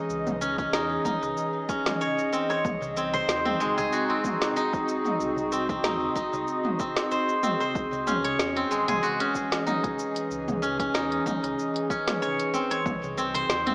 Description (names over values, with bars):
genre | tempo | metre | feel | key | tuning
organic downtempo | 94 BPM | 4/4 | swing 54% on 16ths | C# harmonic minor | A4 = 440 Hz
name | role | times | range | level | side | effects
warbly tape-like pad | sustained chords | 0.0-13.7 s | E3 to D#5 | -30 LUFS | equal | chorus, built-in reverb, sidechain pumping, shimmer reverb
steel-string zither | arpeggios | 0.0-13.7 s | G#3 to C#5 | -26 LUFS | equal | digital delay, shimmer reverb
warm sub bass | bass | 0.1-13.7 s | G#1 to E2 | -44 LUFS | equal | sidechain pumping
deep house drum kit | drums | 0.1-13.7 s | hi-hat, shaker, snare drum, toms | -31 LUFS | equal | none
darbuka | percussion | 0.3-13.5 s | none | -43 LUFS | equal | none
electronic kick drum | drums | 0.6-13.0 s | none | -33 LUFS | equal | none
room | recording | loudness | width
moderate lush hall reverb, RT60 2.2 s | small speaker sound | -24 LUFS | side -39 dB against mid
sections
0.0-13.7 A section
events
none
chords
0.0 C#madd9; 2.6 G#7; 7.8 C#madd9; 12.9 G#7